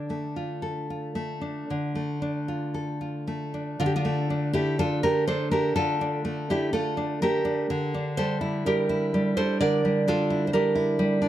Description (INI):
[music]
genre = romantic piece for solo classical guitar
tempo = 56-64 BPM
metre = 4/4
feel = rubato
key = D minor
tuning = A4 = 440 Hz
[part]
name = nylon-string guitar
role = solo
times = 0.0-11.3 s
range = D3 to D5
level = -24 LUFS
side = equal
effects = none
[sound]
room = moderate recital hall reverb, RT60 1.6 s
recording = close, detailed microphones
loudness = -24 LUFS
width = side -12 dB against mid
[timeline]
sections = 0.0-3.8 A section; 3.8-11.3 A section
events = none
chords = 0.0 Dm